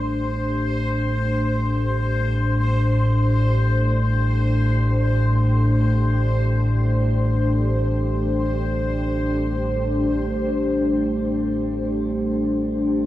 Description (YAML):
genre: dark ambient drone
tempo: free time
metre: none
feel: none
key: A minor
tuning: A4 = 440 Hz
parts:
  - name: deep dark ambient pad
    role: sustained chords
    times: 0.0-13.1 s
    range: A3 to C5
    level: -23 LUFS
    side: equal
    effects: chorus, built-in reverb, shimmer reverb
  - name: deep rumbling drone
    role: drone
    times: 0.0-13.1 s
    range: A1 to A2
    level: -21 LUFS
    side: equal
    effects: built-in reverb
  - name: bubbling stepped-filter texture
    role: texture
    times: 0.0-10.1 s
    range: C5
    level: -31 LUFS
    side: left 3 dB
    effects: chorus, built-in reverb, shimmer reverb
room: wet huge ambient reverb, RT60 8.5 s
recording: small room ambience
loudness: -18 LUFS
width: side -14 dB against mid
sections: 0.0-10.1 A section; 10.1-13.1 B section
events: none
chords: 0.0 Am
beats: free time